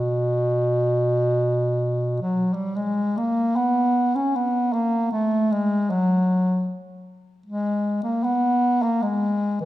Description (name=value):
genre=classical, free, expressive piece for unaccompanied bass clarinet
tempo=44-79 BPM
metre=3/4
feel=rubato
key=unclear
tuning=A4 = 435 Hz
part: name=warm bass clarinet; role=solo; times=0.0-9.7 s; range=B2 to C#4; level=-20 LUFS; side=equal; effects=none
room=wet recital hall reverb, RT60 1.8 s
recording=minimal, uncompressed stereo recording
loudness=-20 LUFS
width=side -15 dB against mid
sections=0.0-2.8 A section; 2.8-9.7 B section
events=none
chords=none